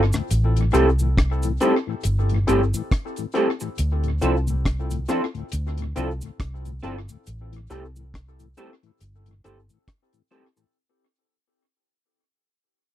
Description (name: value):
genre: lovers rock reggae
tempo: 69 BPM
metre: 4/4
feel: swing 59% on 16ths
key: unclear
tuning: A4 = 439 Hz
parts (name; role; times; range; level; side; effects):
- barky tine electric piano; accompaniment; 0.0-10.5 s; C4 to A4; -27 LUFS; left 4 dB; overdrive, fast tremolo, tape echo
- vintage muted fingered electric bass; bass; 0.0-9.7 s; G1 to D2; -23 LUFS; equal; none
- mellow tonewheel organ; accompaniment; 0.1-10.7 s; D2 to D4; -29 LUFS; left 8 dB; overdrive, chorus vibrato, slow rotary speaker
- deep reggae drum kit; drums; 0.1-10.6 s; hi-hat, kick drum, rim click; -27 LUFS; equal; tape echo
- cabasa; percussion; 0.1-10.7 s; none; -40 LUFS; right 2 dB; tape echo
- electric guitar through a small old amp; stabs; 0.7-10.6 s; C4 to A4; -23 LUFS; right 5 dB; analog chorus
room: little or no reverb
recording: dry, close 1970s-style studio recording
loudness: -20 LUFS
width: side -12 dB against mid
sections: 0.0-10.7 A section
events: fade-out 0.0-10.7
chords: 0.3 Am7; 3.8 Dm7; 7.3 Am7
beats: | 0.30 1.17 2.04 2.91 | 3.78 4.65 5.52 6.39 | 7.26 8.13 9.01 9.88